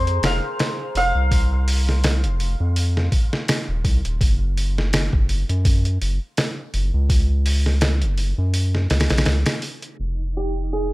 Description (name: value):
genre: trip hop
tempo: 83 BPM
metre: 4/4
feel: swing 56% on 16ths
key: F phrygian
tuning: A4 = 442 Hz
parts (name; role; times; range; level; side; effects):
- santur; melody; 0.0-3.2, 10.4-10.9 s; G4 to F5; -25 LUFS; equal; dub echo
- round analog bass; bass; 0.0-10.9 s; Eb1 to Gb2; -20 LUFS; equal; tube saturation
- trip hop sampler-style drum kit; drums; 0.1-10.0 s; hi-hat, kick drum, snare drum; -21 LUFS; equal; none
- wind-like tuned noise texture; texture; 10.2-10.9 s; Eb4; -33 LUFS; right 5 dB; built-in reverb
room: digital ambience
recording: low-pass filter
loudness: -18 LUFS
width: side -20 dB against mid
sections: 0.0-10.0 A section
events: kick drops out 8.5-10.0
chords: 0.0 F5; 4.2 Gb5; 10.0 Fm7